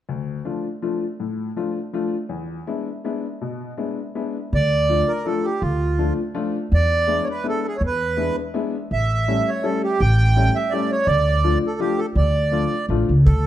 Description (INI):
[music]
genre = musette waltz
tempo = 164 BPM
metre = 3/4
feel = swing 53% on 8ths, rubato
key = D harmonic minor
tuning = A4 = 440 Hz
[part]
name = bright upright piano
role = accompaniment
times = 0.1-13.1 s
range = D2 to F4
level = -25 LUFS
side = left 4 dB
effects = none
[part]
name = accordion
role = melody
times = 4.5-13.5 s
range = F4 to G5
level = -22 LUFS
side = right 3 dB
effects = none
[part]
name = upright bass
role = bass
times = 4.5-13.5 s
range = A1 to E2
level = -19 LUFS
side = equal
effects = none
[part]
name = soft brush drum kit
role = drums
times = 13.3-13.4 s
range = hi-hat, kick drum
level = -20 LUFS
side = equal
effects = none
[sound]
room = moderate recital hall reverb, RT60 1.2 s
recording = dark, warm production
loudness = -19 LUFS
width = side -12 dB against mid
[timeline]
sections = 0.1-4.5 A section; 4.5-13.3 B section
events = none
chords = 0.1 Dm; 2.3 E7; 4.5 Dm; 6.7 E7; 8.9 A7; 11.1 Dm